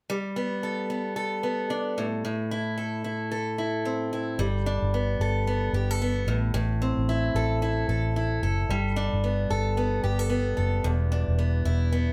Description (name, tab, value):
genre	pop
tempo	112 BPM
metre	4/4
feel	swing 60% on 16ths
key	G major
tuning	A4 = 440 Hz
part	picked acoustic archtop guitar	accompaniment	0.1-12.1 s	E2 to A4	-30 LUFS	equal	none
part	vintage muted fingered electric bass	bass	4.4-12.1 s	E1 to A1	-28 LUFS	equal	none
room	light reverb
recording	none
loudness	-27 LUFS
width	mono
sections	0.1-4.4 A section; 4.4-12.1 B section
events	none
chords	0.1 Gadd9; 2.0 Am; 4.4 Gadd9; 6.3 Am; 8.7 Gadd9; 10.8 E5